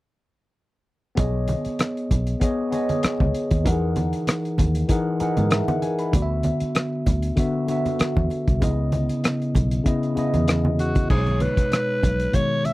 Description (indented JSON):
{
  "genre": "lush 1970s-style soul",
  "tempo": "97 BPM",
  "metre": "4/4",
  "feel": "swing 54% on 16ths",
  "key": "B major",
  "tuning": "A4 = 440 Hz",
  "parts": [
    { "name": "tine electric piano", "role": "accompaniment", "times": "1.2-12.7 s", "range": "B2 to B5", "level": "-24 LUFS", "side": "left 1 dB", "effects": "phaser" },
    { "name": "vintage muted fingered electric bass", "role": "bass", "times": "1.2-12.3 s", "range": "B1 to G#2", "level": "-24 LUFS", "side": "equal", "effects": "none" },
    { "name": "cloth-damped thuddy drum kit", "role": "drums", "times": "1.2-12.7 s", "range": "crash cymbal, hi-hat, kick drum, rim click", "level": "-22 LUFS", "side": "equal", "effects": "none" },
    { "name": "congas", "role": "percussion", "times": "1.2-12.7 s", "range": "none", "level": "-29 LUFS", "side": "right 2 dB", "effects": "none" },
    { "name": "raspy alto saxophone", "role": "melody", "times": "10.8-12.7 s", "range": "F#4 to E5", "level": "-24 LUFS", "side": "equal", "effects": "none" }
  ],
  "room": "little or no reverb",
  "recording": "dry, close 1970s-style studio recording",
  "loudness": "-20 LUFS",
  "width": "side -18 dB against mid",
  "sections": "1.2-11.1 A section; 11.1-12.7 B section",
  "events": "none",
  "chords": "1.2 B69; 3.7 Emaj9#11; 6.1 D69; 8.6 C#m9; 11.1 B69",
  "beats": "| 1.17 1.79 2.41 3.03 | 3.65 4.27 4.89 5.51 | 6.13 6.76 7.38 8.00 | 8.62 9.24 9.86 10.48 | 11.10 11.72 12.34"
}